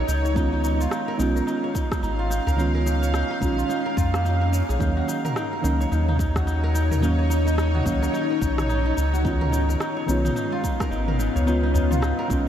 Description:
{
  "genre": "organic downtempo",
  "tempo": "108 BPM",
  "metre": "4/4",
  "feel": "swing 60% on 16ths",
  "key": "unclear",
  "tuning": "A4 = 444 Hz",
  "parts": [
    { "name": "deep mellow chord stab", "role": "accompaniment", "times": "0.0-12.5 s", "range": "Eb3 to F5", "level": "-28 LUFS", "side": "right 1 dB", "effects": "chorus, sidechain pumping, analog delay" },
    { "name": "bowed-like drone", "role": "sustained chords", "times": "0.0-12.5 s", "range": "Cb4 to F5", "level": "-28 LUFS", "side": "left 1 dB", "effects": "built-in reverb, sidechain pumping" },
    { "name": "kora", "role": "arpeggios", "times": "0.0-12.5 s", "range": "Bb3 to Db5", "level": "-29 LUFS", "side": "equal", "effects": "analog delay" },
    { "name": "round analog bass", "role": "bass", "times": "0.0-12.5 s", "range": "Ab1 to F2", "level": "-23 LUFS", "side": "equal", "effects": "tube saturation, sidechain pumping" },
    { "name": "deep house drum kit", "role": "drums", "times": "0.1-12.4 s", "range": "rim click, shaker, toms", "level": "-33 LUFS", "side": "equal", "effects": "small room ambience" },
    { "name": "electronic kick drum", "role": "drums", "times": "0.4-12.4 s", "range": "none", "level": "-26 LUFS", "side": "equal", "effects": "small room ambience" },
    { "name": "udu", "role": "percussion", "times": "2.5-2.6, 6.9-7.0, 11.4-11.9 s", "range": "none", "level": "-29 LUFS", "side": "equal", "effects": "none" }
  ],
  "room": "moderate huge ambient reverb, RT60 7.4 s",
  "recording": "dreamy mix soaked in reverb",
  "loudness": "-20 LUFS",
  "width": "side -10 dB against mid",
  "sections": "0.0-12.5 A section",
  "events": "none",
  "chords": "0.4 Db7; 4.8 Ebm7; 9.2 Db7"
}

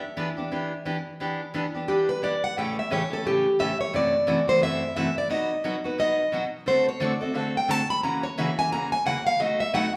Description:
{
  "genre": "jazz",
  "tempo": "175 BPM",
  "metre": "4/4",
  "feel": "swing 60% on 8ths",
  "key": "E minor",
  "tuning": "A4 = 439 Hz",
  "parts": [
    { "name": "picked plugged-in steel-string acoustic guitar", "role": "melody", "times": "0.0-9.9 s", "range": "G4 to B5", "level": "-27 LUFS", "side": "equal", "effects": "none" },
    { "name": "picked steel-string acoustic guitar", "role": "accompaniment", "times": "0.0-10.0 s", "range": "F#2 to A4", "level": "-31 LUFS", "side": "equal", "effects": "none" }
  ],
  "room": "wet large studio reverb, RT60 1.4 s",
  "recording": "band playing live in one room",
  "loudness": "-26 LUFS",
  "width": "mono",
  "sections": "0.0-1.2 A section; 1.2-10.0 B section",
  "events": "steel-string acoustic guitar solo 1.2-10.0",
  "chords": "0.0 Em7; 2.6 A7; 3.9 F#m7b5; 5.3 B; 6.7 D7; 8.0 F#7/C#; 9.4 B7"
}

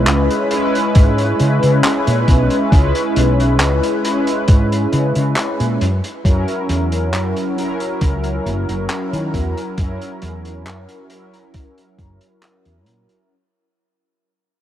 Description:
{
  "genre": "vaporwave",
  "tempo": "68 BPM",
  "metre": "4/4",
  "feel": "straight",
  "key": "unclear",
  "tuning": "A4 = 444 Hz",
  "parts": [
    { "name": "mellow synth brass", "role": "accompaniment", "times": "0.0-13.3 s", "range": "F#3 to B4", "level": "-18 LUFS", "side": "equal", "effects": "analog chorus, tape echo" },
    { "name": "woody fretless electric bass", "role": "bass", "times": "0.0-13.1 s", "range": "F#1 to D#3", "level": "-18 LUFS", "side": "equal", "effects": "lush chorus" },
    { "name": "crunchy breakbeat drum kit", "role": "drums", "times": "0.1-13.3 s", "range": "handclaps, hi-hat", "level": "-24 LUFS", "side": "equal", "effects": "none" },
    { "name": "electronic kick drum", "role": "drums", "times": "1.0-12.2 s", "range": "none", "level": "-13 LUFS", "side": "equal", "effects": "overdrive" }
  ],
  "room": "light reverb, small room ambience",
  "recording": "none",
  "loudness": "-14 LUFS",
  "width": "side -11 dB against mid",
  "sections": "0.0-13.3 A section",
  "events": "fade-out 3.9-13.3",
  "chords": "0.0 C#m7; 5.8 F#7"
}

